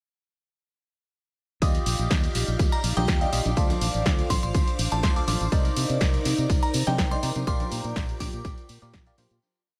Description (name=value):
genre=piano house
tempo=123 BPM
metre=4/4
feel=swing 53% on 16ths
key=Bb major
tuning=A4 = 441 Hz
part: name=string machine, violins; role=sustained chords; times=1.6-9.4 s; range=Eb4 to D6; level=-41 LUFS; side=equal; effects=ensemble chorus, sidechain pumping
part: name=barking FM electric piano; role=riff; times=1.6-9.4 s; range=Eb4 to Eb5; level=-34 LUFS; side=equal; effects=phaser, sidechain pumping, tape echo
part: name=fingered electric bass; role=bass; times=1.6-9.4 s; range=A1 to C3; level=-31 LUFS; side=equal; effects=sidechain pumping
part: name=electronic kick drum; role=drums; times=1.6-9.0 s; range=none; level=-27 LUFS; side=equal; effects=overdrive
part: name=punchy analog drum machine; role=drums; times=1.6-9.4 s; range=hi-hat, snare drum, tambourine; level=-34 LUFS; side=equal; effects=tape echo
part: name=soft brush drum kit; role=drums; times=1.6-9.3 s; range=ride cymbal, snare drum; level=-45 LUFS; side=equal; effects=none
part: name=tambourine and congas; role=percussion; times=1.6-9.4 s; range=none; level=-38 LUFS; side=equal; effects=tape echo
part: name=warbly tape-like pad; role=texture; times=2.4-9.4 s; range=D4 to D6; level=-42 LUFS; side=equal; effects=none
part: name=glassy synth bell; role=melody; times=2.7-8.7 s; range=G5 to D6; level=-35 LUFS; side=equal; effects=chorus, phaser, tape echo
room=light reverb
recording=echo-heavy mix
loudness=-25 LUFS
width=mono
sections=1.6-9.4 drop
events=drop 1.6-9.4; fade-out 6.8-9.4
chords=1.6 Ebmaj9; 3.6 Dm7; 5.5 Cm9; 7.5 Bb6